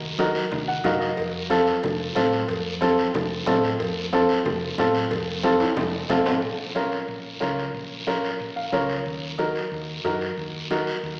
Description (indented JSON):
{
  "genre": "latin, cumbia",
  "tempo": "183 BPM",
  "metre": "4/4",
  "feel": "straight",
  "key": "Bb harmonic minor",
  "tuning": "A4 = 440 Hz",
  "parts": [
    { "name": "hollow-body short-scale fingered electric bass", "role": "bass", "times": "0.0-11.2 s", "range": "F1 to A2", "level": "-37 LUFS", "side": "equal", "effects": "none" },
    { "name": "warm upright piano", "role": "accompaniment", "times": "0.2-10.9 s", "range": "C4 to Gb5", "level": "-26 LUFS", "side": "equal", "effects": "none" },
    { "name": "congas", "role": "percussion", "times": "0.2-11.2 s", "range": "none", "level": "-36 LUFS", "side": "equal", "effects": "none" },
    { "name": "guiro", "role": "percussion", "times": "0.2-11.2 s", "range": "none", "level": "-36 LUFS", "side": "equal", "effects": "none" },
    { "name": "cowbell and timbales", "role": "percussion", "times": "1.2-6.3 s", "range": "none", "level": "-34 LUFS", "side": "equal", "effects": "none" }
  ],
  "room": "wet recital hall reverb, RT60 1.8 s",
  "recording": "recorded in a church or concert hall, small speaker sound",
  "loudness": "-24 LUFS",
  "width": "mono",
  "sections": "0.0-6.4 A section; 6.4-11.2 B section",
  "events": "upright piano fill 0.5-1.2, 8.4-9.1; drum fill 5.4-6.4",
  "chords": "0.0 Ebm; 1.2 F; 6.4 Bbm; 9.1 Ebm"
}